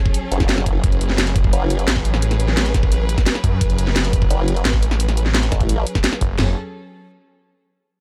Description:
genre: dark technical drum and bass.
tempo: 173 BPM.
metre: 4/4.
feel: straight.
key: F# minor.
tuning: A4 = 437 Hz.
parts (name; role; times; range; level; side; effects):
rich chamber string section; sustained chords; 0.0-6.5 s; F#3 to B4; -30 LUFS; equal; sidechain pumping.
drum and bass drum kit; drums; 0.1-6.5 s; kick drum, snare drum, toms; -21 LUFS; equal; none.
drum and bass drum kit; drums; 0.1-6.3 s; hi-hat, snare drum; -24 LUFS; equal; none.
formant-sweep wobble bass; bass; 0.3-1.9, 4.3-5.9 s; F#1 to A1; -21 LUFS; equal; chorus.
snarling distorted saw bass; bass; 0.8-6.5 s; F#1 to F#2; -22 LUFS; equal; distortion, tube saturation.
room: little or no reverb.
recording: none.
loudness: -18 LUFS.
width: mono.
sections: 0.0-6.4 A section; 6.4-7.8 B section.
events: drop 0.0-6.4.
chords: 0.0 F#m.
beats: 0.14 0.49 | 0.84 1.18 1.53 1.88 | 2.22 2.57 2.92 3.26 | 3.61 3.96 4.30 4.65 | 5.00 5.34 5.69 6.04 | 6.38.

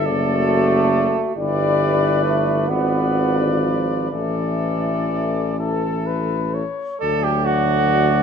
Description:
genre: classical, hymn-like piece for brass band.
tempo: 40-48 BPM (dotted quarters).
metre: 6/8.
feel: rubato.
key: D major.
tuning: A4 = 443 Hz.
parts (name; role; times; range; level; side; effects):
warm cornet; melody; 0.0-8.2 s; A4 to D5; -25 LUFS; left 9 dB; none.
warm flugelhorn; second line; 0.0-8.2 s; F#4 to B4; -24 LUFS; right 5 dB; none.
clear trombone; accompaniment; 0.0-8.2 s; D3 to B3; -24 LUFS; right 2 dB; none.
warm euphonium; accompaniment; 0.0-8.2 s; F#3 to F#4; -27 LUFS; left 3 dB; none.
mellow tuba; bass; 0.0-8.2 s; F#1 to D2; -21 LUFS; equal; none.
room: wet stone room reverb, RT60 1.1 s.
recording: minimal, uncompressed stereo recording.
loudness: -17 LUFS.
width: side -7 dB against mid.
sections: 0.0-7.0 A section; 7.0-8.2 B section.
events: none.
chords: 0.1 D/F#; 1.4 Em7/G; 2.7 G#dim7; 4.1 Asus4; 7.0 D.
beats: 0.07 | 1.36 2.70 | 4.12 5.59 | 7.01.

